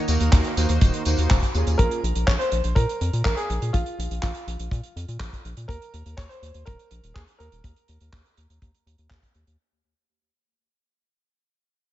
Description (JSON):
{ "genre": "italo disco", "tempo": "123 BPM", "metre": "4/4", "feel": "straight", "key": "unclear", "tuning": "A4 = 440 Hz", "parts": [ { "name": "bright grand piano", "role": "melody", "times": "0.0-9.1 s", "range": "Eb4 to Db5", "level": "-30 LUFS", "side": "equal", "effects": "digital delay" }, { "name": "analog synth brass", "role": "stabs", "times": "0.0-2.0 s", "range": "Bb2 to C5", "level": "-28 LUFS", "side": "right 3 dB", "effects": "chorus, cassette tape, ping-pong delay" }, { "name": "round analog bass", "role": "bass", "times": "0.1-9.6 s", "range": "Eb1 to Bb2", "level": "-25 LUFS", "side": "equal", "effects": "none" }, { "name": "damped 70s drum kit", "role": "drums", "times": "0.1-9.6 s", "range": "handclaps, hi-hat, tambourine", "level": "-31 LUFS", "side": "right 1 dB", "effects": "studio reverb, gated reverb" }, { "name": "kick drum", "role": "drums", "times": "0.3-9.3 s", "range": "none", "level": "-20 LUFS", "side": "equal", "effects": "studio reverb" } ], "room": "small room ambience", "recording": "nothing above 7.8 kHz", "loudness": "-20 LUFS", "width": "side -14 dB against mid", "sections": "0.0-9.6 A section", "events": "fade-out 0.0-9.6", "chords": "0.0 Ebm; 1.8 Bb5; 5.7 Eb5" }